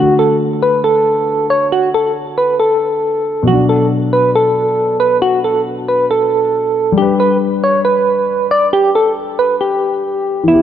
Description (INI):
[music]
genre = hip hop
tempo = 137 BPM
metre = 4/4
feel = half-time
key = unclear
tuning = A4 = 440 Hz
[part]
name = soft electric-piano-like synth keys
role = melody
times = 0.0-10.6 s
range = E4 to D5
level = -12 LUFS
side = right 1 dB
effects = chorus, tremolo, low-pass filter
[part]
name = dark concert grand piano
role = accompaniment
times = 0.0-10.6 s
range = B2 to B4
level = -18 LUFS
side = left 3 dB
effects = low-pass filter
[sound]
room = moderate lush hall reverb, RT60 2.6 s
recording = dark, warm production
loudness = -11 LUFS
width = side -10 dB against mid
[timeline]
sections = 0.0-10.6 A section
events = none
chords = 0.0 D; 3.5 Bm; 7.0 G